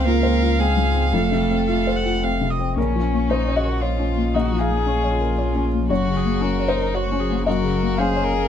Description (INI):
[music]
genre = neoclassical piano and strings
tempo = 115 BPM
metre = 3/4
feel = rubato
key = Bb minor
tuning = A4 = 440 Hz
[part]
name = rich violin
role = melody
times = 0.0-8.5 s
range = Db4 to Bb4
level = -26 LUFS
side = left 5 dB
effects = none
[part]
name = rich cello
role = second line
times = 0.0-8.5 s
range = Bb2 to Db4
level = -27 LUFS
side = right 10 dB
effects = none
[part]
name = felt-muted upright piano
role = accompaniment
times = 0.0-8.5 s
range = Db2 to F5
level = -22 LUFS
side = left 5 dB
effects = none
[part]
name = warm viola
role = accompaniment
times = 0.0-8.5 s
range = Db4 to Gb5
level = -28 LUFS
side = right 4 dB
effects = none
[part]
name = pure sine sub bass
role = bass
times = 0.0-8.5 s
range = F1 to Db2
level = -24 LUFS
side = equal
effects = none
[sound]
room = little or no reverb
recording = close, detailed microphones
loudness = -18 LUFS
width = side -9 dB against mid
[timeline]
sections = 0.0-2.8 A section; 2.8-8.5 B section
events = none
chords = 0.0 Dbmaj7; 1.1 F; 2.8 Bbm; 5.9 Gb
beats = 0.06 0.58 | 1.13 1.67 2.22 | 2.77 3.30 3.82 | 4.34 4.86 5.38 | 5.90 6.42 6.94 | 7.46 7.98